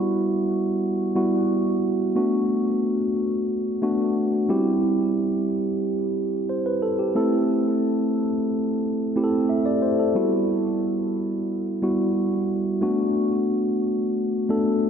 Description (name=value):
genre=pop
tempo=90 BPM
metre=4/4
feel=straight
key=E minor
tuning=A4 = 440 Hz
part: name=mellow tine electric piano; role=solo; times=0.0-14.9 s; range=G3 to E5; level=-21 LUFS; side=equal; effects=diffuse ambient delay
room=wet lush hall reverb, RT60 2.7 s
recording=dreamy mix soaked in reverb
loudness=-21 LUFS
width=side -7 dB against mid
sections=0.0-14.9 A section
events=none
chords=0.0 Emadd9; 2.2 Bm7; 4.5 C; 7.2 Am; 10.2 Emadd9; 12.8 Bm7